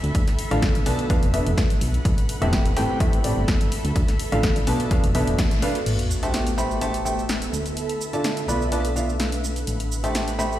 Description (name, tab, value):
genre	piano house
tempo	126 BPM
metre	4/4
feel	swing 53% on 16ths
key	A minor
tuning	A4 = 436 Hz
part	solid FM bass	bass	0.0-10.6 s	E1 to A2	-26 LUFS	equal	sidechain pumping
part	house drum kit	drums	0.0-10.6 s	cabasa, crash cymbal, hi-hat, rim click, snare drum	-29 LUFS	equal	none
part	granular cloud pad	texture	0.0-10.6 s	B3 to B5	-31 LUFS	right 1 dB	built-in reverb, sidechain pumping
part	electronic kick drum	drums	0.1-5.5 s	none	-22 LUFS	equal	none
part	clear upright piano	riff	0.5-10.6 s	A2 to B5	-26 LUFS	equal	vintage 12-bit sampler grit, sidechain pumping, dub echo
part	sub drop	sound effects	5.9-7.8 s	none	-30 LUFS	equal	none
room	light reverb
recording	played on a big sound system in a bare room, large studio reverb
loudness	-20 LUFS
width	side -13 dB against mid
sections	0.0-5.9 A section; 5.9-10.6 B section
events	band accent 5.4; impact 5.9-7.8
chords	0.0 Dm; 0.9 Bm7b5; 2.1 Am7; 3.7 Dm; 4.7 Bm7b5; 5.9 Am7; 7.5 Dm; 8.5 Bm7b5; 9.7 Am7